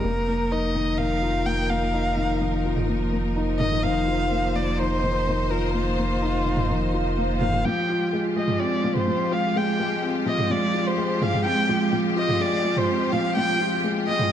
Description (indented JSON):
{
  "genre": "piano and strings electronica",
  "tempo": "126 BPM",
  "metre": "4/4",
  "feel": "straight",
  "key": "unclear",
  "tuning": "A4 = 440 Hz",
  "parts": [
    { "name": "dark violin", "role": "melody", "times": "0.0-14.3 s", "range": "F4 to G5", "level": "-26 LUFS", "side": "equal", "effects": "low-pass filter" },
    { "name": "bright studio string section", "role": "sustained chords", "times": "0.0-14.3 s", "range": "F3 to C5", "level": "-29 LUFS", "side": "right 1 dB", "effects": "none" },
    { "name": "felt-muted upright piano", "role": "riff", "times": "0.0-14.3 s", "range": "Eb3 to F4", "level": "-25 LUFS", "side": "left 2 dB", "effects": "low-pass filter" },
    { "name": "round analog bass", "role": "bass", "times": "0.0-7.6 s", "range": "F1", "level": "-27 LUFS", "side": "right 1 dB", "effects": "none" },
    { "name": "electronic toms", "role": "drums", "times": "2.8-14.3 s", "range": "none", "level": "-29 LUFS", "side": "right 2 dB", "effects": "overdrive" },
    { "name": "swell", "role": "sound effects", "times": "6.8-7.6 s", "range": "none", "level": "-32 LUFS", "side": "right 3 dB", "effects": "none" }
  ],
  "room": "moderate lush hall reverb, RT60 1.7 s, studio ambience",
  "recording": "dark, warm production",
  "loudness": "-21 LUFS",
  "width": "side -9 dB against mid",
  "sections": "0.0-7.7 A section; 7.7-14.3 B section",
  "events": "filter sweep on drum 0.0-7.7; swell 6.8-7.7; build-up 7.7-14.3",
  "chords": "0.0 Ebsus2/F; 7.7 Fmadd9"
}